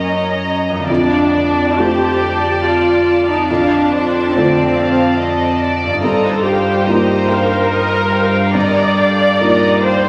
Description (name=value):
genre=cinematic, emotional film score for orchestra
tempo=71 BPM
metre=3/4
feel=rubato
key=unclear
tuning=A4 = 438 Hz
part: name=dark studio violin section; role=melody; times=0.0-10.1 s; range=A4 to F5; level=-24 LUFS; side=equal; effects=none
part: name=warm studio violin section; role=second line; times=0.0-10.1 s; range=Db5 to Bb5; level=-23 LUFS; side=equal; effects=none
part: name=felt-muted upright piano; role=accompaniment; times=0.0-10.1 s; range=F2 to Bb4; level=-21 LUFS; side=equal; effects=none
part: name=warm studio viola section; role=accompaniment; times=0.0-10.1 s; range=C4 to D5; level=-19 LUFS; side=equal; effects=none
part: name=rich studio cello section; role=bass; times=0.0-10.1 s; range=F2 to G2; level=-23 LUFS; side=equal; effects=none
part: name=concert harp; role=arpeggios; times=0.7-9.9 s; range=F2 to F4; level=-30 LUFS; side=equal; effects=none
room=wet scoring stage reverb, RT60 2.0 s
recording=vinyl crackle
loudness=-14 LUFS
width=mono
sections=0.0-10.1 A section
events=none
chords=0.0 Gb6; 0.9 Dm/F; 6.0 Ebadd9/G